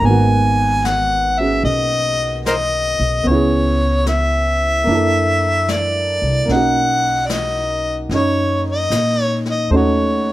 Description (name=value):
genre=jazz ballad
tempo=74 BPM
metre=4/4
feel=swing 67% on 8ths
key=B major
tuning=A4 = 440 Hz
part: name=warm harmonica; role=melody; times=0.0-10.3 s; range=A#4 to G#5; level=-18 LUFS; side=left 1 dB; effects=none
part: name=warm upright piano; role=accompaniment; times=0.0-10.3 s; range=D#3 to A4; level=-20 LUFS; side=right 2 dB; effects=none
part: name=upright bass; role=bass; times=0.0-10.3 s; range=G#1 to A#2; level=-20 LUFS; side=equal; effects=none
part: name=jazz brush drum kit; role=drums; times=0.0-10.3 s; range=brushed snare drum, hi-hat, snare drum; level=-30 LUFS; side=left 3 dB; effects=none
room=light reverb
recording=none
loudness=-14 LUFS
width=side -15 dB against mid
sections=0.0-10.3 A section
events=none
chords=0.0 G#m7; 3.3 C#m7; 4.9 F#7alt; 6.5 Bmaj7; 9.7 D#m7b5